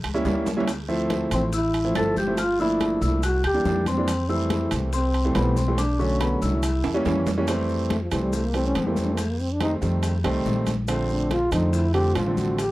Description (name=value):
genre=Afro-Cuban jazz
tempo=141 BPM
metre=4/4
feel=straight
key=F major from 7.5 s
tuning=A4 = 440 Hz
part: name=upright bass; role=bass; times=0.0-12.7 s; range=G1 to F2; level=-26 LUFS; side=equal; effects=none
part: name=bongos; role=percussion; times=0.0-12.7 s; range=none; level=-38 LUFS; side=left 8 dB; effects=none
part: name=congas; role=percussion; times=0.0-12.7 s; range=none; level=-32 LUFS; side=left 3 dB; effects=none
part: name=maracas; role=percussion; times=0.0-12.7 s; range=none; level=-42 LUFS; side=left 6 dB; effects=none
part: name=timbales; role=percussion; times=0.0-12.7 s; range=none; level=-32 LUFS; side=right 6 dB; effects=none
part: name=clear concert grand piano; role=accompaniment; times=0.1-12.6 s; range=D3 to E4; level=-26 LUFS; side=right 1 dB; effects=none
part: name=guiro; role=percussion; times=0.3-12.7 s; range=none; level=-44 LUFS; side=right 8 dB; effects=none
part: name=breathy trombone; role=melody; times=1.3-12.7 s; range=E3 to A4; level=-25 LUFS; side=equal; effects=none
part: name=celesta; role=second line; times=1.3-7.2 s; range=B5 to A6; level=-32 LUFS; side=left 4 dB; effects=none
room=little or no reverb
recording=dry, close 1970s-style studio recording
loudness=-21 LUFS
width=side -17 dB against mid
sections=0.0-7.5 A section; 7.5-12.7 B section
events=drum fill 0.5, 6.8-7.5; trombone solo 7.5-12.7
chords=0.0 A7b9 (rootless); 0.7 Dm9; 2.4 Gm9; 3.2 C7; 4.1 Fmaj7; 5.8 Bm7; 6.6 C7b9; 7.5 Fmaj9; 9.2 F7; 10.9 Bbmaj7